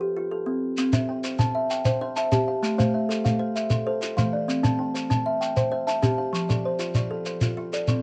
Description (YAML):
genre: southern african traditional, mbira-style interlocking cycle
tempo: 129 BPM (dotted quarters)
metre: 12/8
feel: straight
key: C major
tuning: A4 = 440 Hz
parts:
  - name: kalimba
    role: arpeggios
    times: 0.0-8.0 s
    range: E3 to A5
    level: -28 LUFS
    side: equal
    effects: none
  - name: shekere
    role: percussion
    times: 0.8-8.0 s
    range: none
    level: -28 LUFS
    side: equal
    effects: none
  - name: buzzing kalimba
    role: arpeggios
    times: 0.9-8.0 s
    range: F3 to A5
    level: -31 LUFS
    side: equal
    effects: none
room: moderate studio reverb, RT60 0.5 s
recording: dark, warm production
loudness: -25 LUFS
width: mono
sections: 0.8-8.0 A section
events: none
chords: 0.0 F; 0.8 C; 2.6 Am; 4.5 C; 6.3 F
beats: 0.31 | 0.78 1.24 1.70 2.17 | 2.63 3.10 3.56 4.02 | 4.49 4.95 5.41 5.88 | 6.34 6.80 7.26 7.73